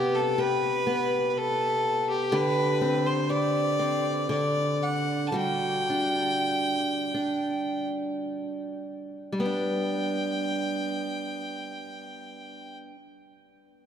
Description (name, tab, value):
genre	celtic folk, Celtic slow air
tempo	37-62 BPM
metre	3/4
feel	rubato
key	G major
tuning	A4 = 438 Hz
part	rich fiddle	melody	0.0-12.8 s	G4 to A5	-28 LUFS	equal	none
part	picked old ladder-braced acoustic guitar	accompaniment	0.0-13.0 s	C3 to G4	-28 LUFS	equal	none
room	wet cathedral reverb, RT60 5.4 s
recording	none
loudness	-25 LUFS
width	side -8 dB against mid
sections	0.0-9.4 A section; 9.4-13.9 B section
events	slowing down 2.3-9.4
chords	0.0 C5; 2.3 D7sus4; 4.3 N.C.; 5.4 G5; 9.4 G